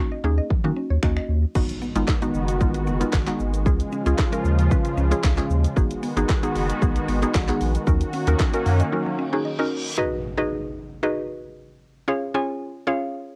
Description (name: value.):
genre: dance-pop.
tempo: 114 BPM.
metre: 4/4.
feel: straight.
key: G# dorian.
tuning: A4 = 435 Hz.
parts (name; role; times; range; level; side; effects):
mallet-like synth pluck; accompaniment; 0.0-13.4 s; G#3 to G#5; -29 LUFS; equal; chorus, sidechain pumping, cassette tape, plate reverb.
mallet-like synth pluck; arpeggios; 0.1-9.7 s; F#3 to F#5; -37 LUFS; equal; chorus, sidechain pumping, cassette tape, tape echo, plate reverb.
round analog bass; bass; 0.2-8.8 s; F#1 to D#3; -24 LUFS; equal; sidechain pumping.
house drum kit; drums; 0.5-8.9 s; crash cymbal, finger snaps, handclaps, hi-hat, kick drum, shaker, snare drum; -25 LUFS; equal; cassette tape.
warm analog pad; sustained chords; 1.6-10.0 s; C#3 to F#4; -30 LUFS; equal; chorus, sidechain pumping, cassette tape, plate reverb.
impact and reverse cymbal; sound effects; 1.7-3.7, 9.3-12.1 s; none; -38 LUFS; equal; none.
room: light reverb.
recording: home recording on cassette.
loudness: -23 LUFS.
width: mono.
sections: 0.0-1.6 A section; 1.6-10.0 B section; 10.0-13.4 C section.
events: impact 1.6-3.7, 10.0-12.1; break 8.9-10.0; reverse cymbal 9.3-10.0.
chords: 0.0 D#m7; 1.6 G#m7; 3.7 C#; 5.8 G#m7; 7.9 D#m7; 10.0 G#m7; 12.1 C#.